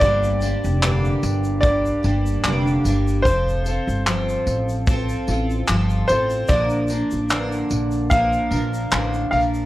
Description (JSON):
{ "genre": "acoustic pop", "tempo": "74 BPM", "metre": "4/4", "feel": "swing 55% on 16ths", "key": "Bb major", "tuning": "A4 = 440 Hz", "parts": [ { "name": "bright upright piano", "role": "melody", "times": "0.0-9.4 s", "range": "C5 to F5", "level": "-23 LUFS", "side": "equal", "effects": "tape echo" }, { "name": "picked steel-string acoustic guitar", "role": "accompaniment", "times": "0.0-9.7 s", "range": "G2 to Bb4", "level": "-24 LUFS", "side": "equal", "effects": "double-tracked left and right" }, { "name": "upright bass", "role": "bass", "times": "0.0-9.7 s", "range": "F1 to Bb1", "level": "-22 LUFS", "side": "equal", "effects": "none" }, { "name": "loose indie drum kit", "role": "drums", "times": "0.0-9.5 s", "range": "handclaps, kick drum, tambourine", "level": "-23 LUFS", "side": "equal", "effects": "none" }, { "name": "egg shaker", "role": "percussion", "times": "0.0-9.7 s", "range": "none", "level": "-44 LUFS", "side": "left 3 dB", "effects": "none" } ], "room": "studio reverb", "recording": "worn, warbling old tape, cassette tape, warbly pitch drift", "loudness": "-18 LUFS", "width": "side -16 dB against mid", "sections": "0.0-9.7 A section", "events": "none", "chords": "0.0 Gm; 3.3 F; 6.5 Bb" }